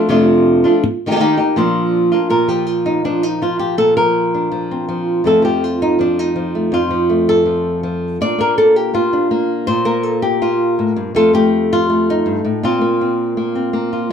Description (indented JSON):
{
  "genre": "flamenco",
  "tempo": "163 BPM",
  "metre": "4/4",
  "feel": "straight",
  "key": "Bb major",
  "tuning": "A4 = 439 Hz",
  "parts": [
    { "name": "flamenco guitar", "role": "solo", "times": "0.0-14.1 s", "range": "F2 to D5", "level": "-13 LUFS", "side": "equal", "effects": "none" }
  ],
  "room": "wet studio reverb, RT60 0.6 s",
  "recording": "dark, warm production",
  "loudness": "-13 LUFS",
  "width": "side -7 dB against mid",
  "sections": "0.0-2.3 A section; 2.3-14.1 B section",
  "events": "none",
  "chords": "0.0 F6; 0.8 Eb; 1.6 Bb; 2.3 Bbadd9; 5.3 F; 8.2 Bbadd9; 11.2 F; 12.6 Bbsus2"
}